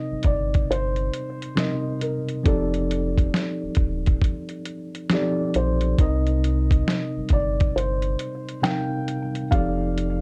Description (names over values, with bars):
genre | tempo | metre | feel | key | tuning
lo-fi hip hop | 68 BPM | 4/4 | swing 65% on 16ths | C dorian | A4 = 438 Hz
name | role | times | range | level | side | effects
felt-muted upright piano | melody | 0.0-10.2 s | A4 to G5 | -32 LUFS | equal | tape echo
tine electric piano | accompaniment | 0.0-10.2 s | C3 to F5 | -29 LUFS | equal | overdrive, cassette tape
sub bass with octave | bass | 0.1-10.2 s | Eb1 to C2 | -28 LUFS | equal | none
dusty soul sampler-style drum kit | drums | 0.2-10.2 s | hi-hat, kick drum, snare drum | -24 LUFS | equal | none
room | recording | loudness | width
light reverb | dark, warm production | -23 LUFS | mono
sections
0.0-10.2 A section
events
none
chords
0.0 Cm7; 2.5 F13; 6.0 Cm7; 9.5 F13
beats
0.69 1.58 | 2.46 3.34 4.22 5.11 | 5.99 6.87 7.75 8.63 | 9.52